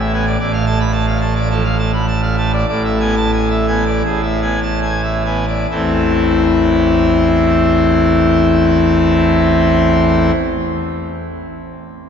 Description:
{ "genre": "classical, organ toccata", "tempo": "66-114 BPM", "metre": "4/4", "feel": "straight", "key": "A minor", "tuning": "A4 = 440 Hz", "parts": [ { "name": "pipe organ, full organ", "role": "solo", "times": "0.0-10.3 s", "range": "A1 to B5", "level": "-13 LUFS", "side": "equal", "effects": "none" } ], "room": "wet cathedral reverb, RT60 5.8 s", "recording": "heard from further back in the room, nothing above 7.5 kHz", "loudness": "-12 LUFS", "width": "side -7 dB against mid", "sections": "0.0-5.7 A section; 5.7-12.1 B section", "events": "slowing down 0.0-5.7", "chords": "0.4 Dm/A; 2.7 E7/A; 5.7 Am" }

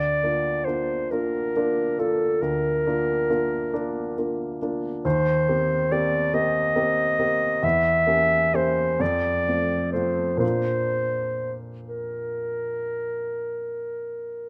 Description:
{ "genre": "classical, romantic duo for clarinet and grand piano", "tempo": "40-47 BPM (dotted quarters)", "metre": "12/8", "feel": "rubato", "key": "Bb major", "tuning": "A4 = 440 Hz", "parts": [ { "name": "mellow clarinet", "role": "melody", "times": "0.0-14.5 s", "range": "A4 to E5", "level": "-26 LUFS", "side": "equal", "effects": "none" }, { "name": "warm grand piano", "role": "accompaniment", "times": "0.0-14.5 s", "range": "D2 to G4", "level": "-29 LUFS", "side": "equal", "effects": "none" } ], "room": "light reverb", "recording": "close, detailed microphones", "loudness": "-24 LUFS", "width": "mono", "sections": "0.0-14.5 A section", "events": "none", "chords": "0.0 Bb/D; 5.0 Cm7/Eb; 7.6 Edim7; 9.0 F; 10.4 Bb" }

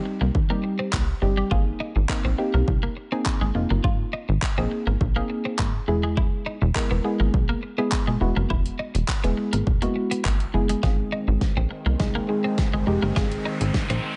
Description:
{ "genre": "dance-pop", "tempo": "103 BPM", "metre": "4/4", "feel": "straight", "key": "Ab major", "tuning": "A4 = 440 Hz", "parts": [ { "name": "soft round pluck", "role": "accompaniment", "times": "0.0-13.8 s", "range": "G3 to Bb4", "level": "-30 LUFS", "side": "equal", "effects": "chorus, sidechain pumping" }, { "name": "twelve-string electric guitar", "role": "riff", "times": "0.0-14.1 s", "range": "G3 to F4", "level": "-34 LUFS", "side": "equal", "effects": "subtle chorus" }, { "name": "plucky analog bass", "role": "bass", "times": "0.2-14.0 s", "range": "E1 to Eb2", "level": "-26 LUFS", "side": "equal", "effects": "sidechain pumping" }, { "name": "deep house drum kit", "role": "drums", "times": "0.3-14.0 s", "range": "handclaps, hi-hat, kick drum, snare drum", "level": "-27 LUFS", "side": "equal", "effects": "none" }, { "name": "soft supersaw", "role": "sustained chords", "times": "10.8-14.2 s", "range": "Eb3 to C4", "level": "-36 LUFS", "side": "equal", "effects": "sidechain pumping" }, { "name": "riser", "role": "sound effects", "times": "11.7-14.2 s", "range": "none", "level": "-39 LUFS", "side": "equal", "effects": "none" } ], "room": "little or no reverb", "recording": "nothing above 10.4 kHz", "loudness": "-24 LUFS", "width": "mono", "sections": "0.0-10.8 A section; 10.8-14.2 B section", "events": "build-up 10.8-14.2; drum fill 10.8-14.2; filter sweep 10.8-14.2; riser 11.7-14.2", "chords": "0.0 Cm; 1.5 Abadd9; 5.9 E; 10.8 Ab" }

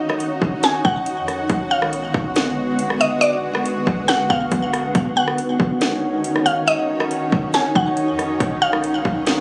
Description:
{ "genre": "hip hop, atmospheric cloud-rap", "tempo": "139 BPM", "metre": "4/4", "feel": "half-time", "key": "Eb minor", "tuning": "A4 = 440 Hz", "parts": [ { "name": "mallet-like synth pluck", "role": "melody", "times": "0.0-8.8 s", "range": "D5 to Ab5", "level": "-24 LUFS", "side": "equal", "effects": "chorus, digital delay" }, { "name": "shimmering ambient pad", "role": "sustained chords", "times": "0.0-9.4 s", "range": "D3 to Gb4", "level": "-24 LUFS", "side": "equal", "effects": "chorus, built-in reverb, sidechain pumping" }, { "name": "clean 808-style bass", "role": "bass", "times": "0.0-9.4 s", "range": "Bb1 to F2", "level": "-30 LUFS", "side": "equal", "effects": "none" }, { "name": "trap drum kit", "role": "drums", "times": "0.1-9.4 s", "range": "hi-hat, kick drum, rim click, snare drum", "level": "-24 LUFS", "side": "equal", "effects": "vintage 12-bit sampler grit" } ], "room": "light reverb", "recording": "recorded on a phone in the room, studio reverb, compression", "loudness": "-20 LUFS", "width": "mono", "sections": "0.0-9.4 A section", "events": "none", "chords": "0.0 Ebm9; 1.5 Bb7b9b13; 4.9 Ebm7; 8.4 Bb7b9b13" }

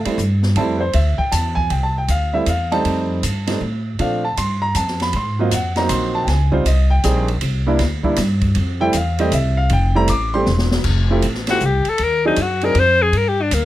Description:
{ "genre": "jazz, small-group swing and bop", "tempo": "158 BPM", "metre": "3/4", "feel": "swing 66% on 8ths", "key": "F major", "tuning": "A4 = 443 Hz", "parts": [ { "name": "upright bass", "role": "bass", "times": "0.0-13.7 s", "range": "E1 to Bb2", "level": "-18 LUFS", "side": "equal", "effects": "none" }, { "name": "warm grand piano", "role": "accompaniment", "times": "0.1-12.7 s", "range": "F3 to D6", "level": "-20 LUFS", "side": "right 1 dB", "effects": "none" }, { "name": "open jazz drum kit", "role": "drums", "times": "0.1-13.6 s", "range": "crash cymbal, hi-hat, kick drum, ride cymbal, snare drum", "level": "-26 LUFS", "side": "equal", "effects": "none" }, { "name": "clear alto saxophone", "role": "melody", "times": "11.5-13.7 s", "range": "Bb3 to C5", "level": "-16 LUFS", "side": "left 4 dB", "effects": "none" } ], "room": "light reverb", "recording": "close, detailed microphones", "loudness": "-15 LUFS", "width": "side -14 dB against mid", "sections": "0.0-1.7 A section; 1.7-10.8 A section; 10.8-13.7 A section", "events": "drum fill 10.5-10.8; alto saxophone solo 10.8-13.7", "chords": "0.0 Fmaj7; 1.7 C69; 2.8 F9; 4.0 Bbmaj7; 5.1 Ab13; 6.3 Dbmaj7sus2; 7.4 C9; 8.6 Fmaj7; 10.8 Fmaj9; 12.0 Ab7#11; 13.1 Gm" }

